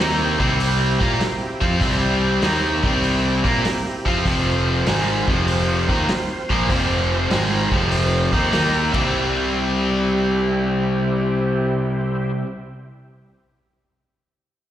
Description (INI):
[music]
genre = blues rock power trio and southern rock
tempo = 98 BPM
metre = 4/4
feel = swing 68% on 8ths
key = C mixolydian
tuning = A4 = 439 Hz
[part]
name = overdriven tonewheel organ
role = sustained chords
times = 0.0-12.3 s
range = Bb3 to C5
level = -28 LUFS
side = right 2 dB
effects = slow rotary speaker, chorus vibrato
[part]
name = cranked stack guitar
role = riff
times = 0.0-12.5 s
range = F2 to Bb4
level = -19 LUFS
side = equal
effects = overdrive, spring reverb
[part]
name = fingered electric bass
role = bass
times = 0.0-12.3 s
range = F1 to Bb2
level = -25 LUFS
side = equal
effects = none
[part]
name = vintage drum kit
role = drums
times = 0.0-9.0 s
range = crash cymbal, hi-hat, kick drum, snare drum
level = -25 LUFS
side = equal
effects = none
[sound]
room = light reverb, studio ambience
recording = live gig heard through the venue's PA, recital hall reverb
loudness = -17 LUFS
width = side -11 dB against mid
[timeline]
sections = 0.0-9.1 A section; 9.1-11.6 B section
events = none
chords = 0.0 C; 4.3 F5; 8.5 Eb5; 8.8 C